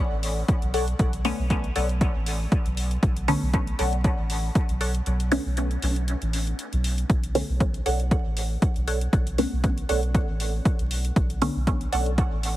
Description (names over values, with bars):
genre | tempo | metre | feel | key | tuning
dub techno | 118 BPM | 4/4 | swing 54% on 16ths | B minor | A4 = 440 Hz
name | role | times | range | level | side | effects
soft dub sub bass | bass | 0.0-12.6 s | A1 to B1 | -26 LUFS | equal | sidechain pumping
electronic hi-hat | drums | 0.2-12.5 s | none | -36 LUFS | left 1 dB | none
electronic kick drum | drums | 0.5-12.3 s | none | -23 LUFS | equal | overdrive
filtered dub chord stab | riff | 0.7-12.1 s | A4 to F#5 | -32 LUFS | equal | phaser, analog chorus, sidechain pumping, dub echo
filtered dub chord stab | stabs | 1.2-11.6 s | D3 to C#4 | -30 LUFS | equal | phaser, sidechain pumping, dub echo
room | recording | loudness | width
little or no reverb | heavily compressed radio sound, multiband compression, vinyl crackle | -22 LUFS | side -15 dB against mid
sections
0.0-12.6 A section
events
kick drops out 5.1-7.1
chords
0.0 Bm9